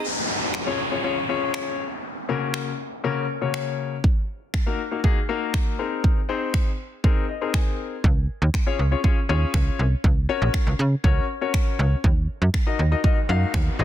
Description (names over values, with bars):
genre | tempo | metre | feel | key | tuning
dance-pop | 120 BPM | 4/4 | straight | Eb dorian | A4 = 437 Hz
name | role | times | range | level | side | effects
downlifter and riser | sound effects | 0.0-4.0, 12.6-13.8 s | none | -29 LUFS | equal | none
house drum kit | drums | 0.5-13.7 s | finger snaps, kick drum | -21 LUFS | right 1 dB | soft clipping on snare
warm baby grand piano | accompaniment | 0.7-13.8 s | Db3 to Ab5 | -26 LUFS | left 7 dB | sidechain pumping
slap-like FM bass | bass | 8.0-13.8 s | Ab1 to Db3 | -21 LUFS | right 1 dB | sidechain pumping
room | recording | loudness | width
digital ambience | dense, heavily limited modern master | -20 LUFS | side -11 dB against mid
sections
0.0-13.8 A section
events
grand piano fill 7.0-8.0; riser 12.6-13.8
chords
0.0 Db; 2.0 Gb/Db; 4.0 Ebm; 5.8 Abadd9; 8.0 Db; 10.0 Gb; 12.0 Ebm